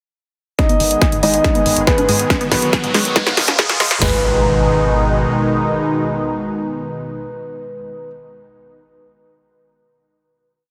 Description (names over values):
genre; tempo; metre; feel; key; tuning
uplifting trance; 140 BPM; 4/4; straight; G# dorian; A4 = 439 Hz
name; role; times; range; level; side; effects
dark grand piano; second line; 0.6-8.1 s; B3 to D#5; -23 LUFS; equal; dub echo
unison pluck; arpeggios; 0.6-4.2 s; G#2 to G#4; -28 LUFS; equal; sidechain pumping, dub echo
big-room dance drum kit; drums; 0.6-4.1 s; hi-hat, kick drum, snare drum, toms; -20 LUFS; equal; none
punchy analog drum machine; drums; 0.6-4.0 s; congas, hi-hat, snare drum; -22 LUFS; equal; overdrive, high-pass filter on snare, high-pass filter on hats, high-pass filter on perc
riser and impact; sound effects; 2.0-8.1 s; none; -27 LUFS; equal; none
lush unison pad; sustained chords; 0.7-8.1 s; B2 to G#4; -22 LUFS; equal; chorus, phaser, sidechain pumping
tight sequencer bass; bass; 0.8-5.3 s; G#1 to G#2; -24 LUFS; equal; sidechain pumping
room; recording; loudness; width
moderate huge ambient reverb, RT60 4.9 s; dense, heavily limited modern master, high-pass filter; -16 LUFS; mono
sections
0.6-4.0 build; 4.0-7.4 final chord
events
build-up 0.6-4.0; drum fill 0.6-4.0; filter sweep on synth arpeggio sound 0.6-4.0; filter sweep 0.6-4.0; riser 2.0-4.0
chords
0.6 G#m; 2.3 B; 3.2 C#; 4.0 G#m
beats
| 0.59 1.02 1.45 1.87 | 2.30 2.73 3.16 3.59 | 4.02 4.45 4.87 5.30 | 5.73 6.16 6.59 7.02